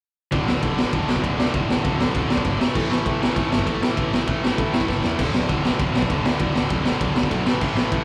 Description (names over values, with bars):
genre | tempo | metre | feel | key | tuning
punk rock | 197 BPM | 4/4 | straight | unclear | A4 = 440 Hz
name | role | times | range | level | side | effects
crunchy overdriven guitar | riff | 0.3-8.0 s | D2 to A3 | -29 LUFS | equal | slapback echo
distorted electric guitar | riff | 0.3-8.0 s | D2 to A3 | -28 LUFS | equal | overdrive
modern bright picked electric bass | bass | 0.3-8.0 s | D1 to A2 | -30 LUFS | equal | none
raw garage drum kit | drums | 0.3-8.0 s | crash cymbal, kick drum, ride cymbal, snare drum | -24 LUFS | equal | none
room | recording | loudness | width
small room ambience | live gig heard through the venue's PA, club reverb | -22 LUFS | mono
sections
0.3-8.0 A section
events
drum fill 4.9-5.2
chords
0.3 D5; 2.6 A5; 5.2 D5; 7.5 A5